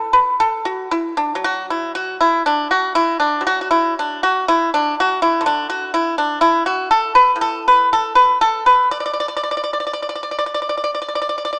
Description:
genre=chinese traditional, Chinese solo plucked strings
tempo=55-62 BPM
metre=4/4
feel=rubato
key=D gong mode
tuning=A4 = 444 Hz
part: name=pipa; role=solo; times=0.0-11.6 s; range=A2 to D5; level=-17 LUFS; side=equal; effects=none
room=moderate concert hall reverb, RT60 2.4 s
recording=small speaker sound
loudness=-17 LUFS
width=mono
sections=0.0-11.6 A section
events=none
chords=none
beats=0.35 | 1.38 2.40 3.43 4.44 | 5.41 6.38 7.37 8.38 | 9.40 10.45 11.51

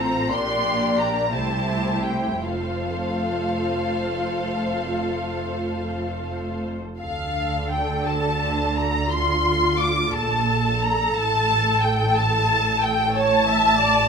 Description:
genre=classical, slow romantic movement for string orchestra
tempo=52-62 BPM (dotted quarters)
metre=12/8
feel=rubato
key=F major, D minor from 7.0 s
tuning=A4 = 440 Hz
part: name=muted symphonic violin section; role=melody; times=0.0-14.1 s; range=F5 to D6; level=-24 LUFS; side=left 2 dB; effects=none
part: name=muted symphonic violin section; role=second line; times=0.0-14.1 s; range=G4 to D6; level=-27 LUFS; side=left 2 dB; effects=none
part: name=muted symphonic viola section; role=accompaniment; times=0.0-14.1 s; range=A3 to E5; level=-26 LUFS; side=right 2 dB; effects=none
part: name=muted symphonic cello section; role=bass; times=0.0-14.1 s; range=F2 to D3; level=-29 LUFS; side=right 3 dB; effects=none
part: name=muted symphonic double bass section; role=bass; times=0.0-14.1 s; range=F1 to D2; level=-29 LUFS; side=right 2 dB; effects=none
room=moderate recital hall reverb, RT60 1.6 s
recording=minimal, uncompressed stereo recording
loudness=-20 LUFS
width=side -6 dB against mid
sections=0.0-7.0 A section; 7.0-14.1 B section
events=none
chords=0.3 Gm/Bb; 1.3 C; 2.4 F; 7.0 Dm; 11.2 N.C.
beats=0.31 1.34 | 2.44 3.58 4.74 5.88 | 7.02 8.08 9.14 10.15 | 11.17 12.18 13.17

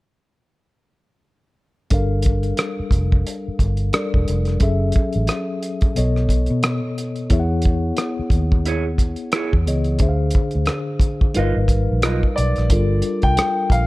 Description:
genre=R&B, neo-soul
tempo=89 BPM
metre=4/4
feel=swing 57% on 16ths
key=unclear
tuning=A4 = 440 Hz
part: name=mellow tine electric piano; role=accompaniment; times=1.9-13.9 s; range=B2 to F#5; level=-24 LUFS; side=left 2 dB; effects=medium stereo tremolo
part: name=vintage muted fingered electric bass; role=bass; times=1.9-13.9 s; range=E1 to B2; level=-20 LUFS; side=equal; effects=none
part: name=cloth-damped thuddy drum kit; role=drums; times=1.9-13.9 s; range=hi-hat, kick drum, rim click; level=-19 LUFS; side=equal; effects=none
part: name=electric guitar through a small old amp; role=second line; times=8.7-12.2 s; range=E4 to D#5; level=-26 LUFS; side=right 5 dB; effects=none
part: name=clear concert grand piano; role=melody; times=12.4-13.9 s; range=D5 to G5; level=-22 LUFS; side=left 1 dB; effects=none
room=studio reverb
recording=dark, warm production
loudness=-17 LUFS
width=side -20 dB against mid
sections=1.9-12.7 A section; 12.7-13.9 B section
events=none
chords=1.9 Gm7; 4.6 F#m7; 6.0 B9; 7.3 E6; 10.0 Dm7b5; 11.3 G7alt; 12.7 Gm7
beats=| 1.91 2.58 3.26 3.93 | 4.61 5.28 5.96 6.63 | 7.30 7.98 8.65 9.33 | 10.00 10.68 11.35 12.02 | 12.70 13.37

